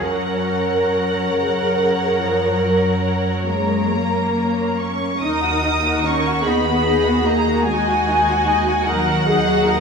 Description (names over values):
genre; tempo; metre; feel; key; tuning
classical, slow romantic movement for string orchestra; 45-50 BPM (dotted quarters); 12/8; rubato; F# major, Eb minor from 5.2 s; A4 = 440 Hz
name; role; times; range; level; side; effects
rich symphonic violin section; melody; 0.0-9.8 s; F#5 to Eb6; -22 LUFS; left 1 dB; none
rich symphonic violin section; second line; 0.0-9.8 s; Eb4 to Gb5; -24 LUFS; equal; none
rich symphonic viola section; accompaniment; 0.0-9.8 s; C#3 to Bb4; -23 LUFS; left 1 dB; none
rich symphonic cello section; bass; 0.0-9.8 s; Gb3 to A#4; -22 LUFS; right 1 dB; none
warm symphonic double bass section; bass; 0.0-9.8 s; Eb2 to F#2; -24 LUFS; right 1 dB; none
room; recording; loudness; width
wet stone room reverb, RT60 1.4 s; none; -16 LUFS; side -5 dB against mid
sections
0.0-5.2 A section; 5.2-9.8 B section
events
none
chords
0.0 F#; 5.2 Ebm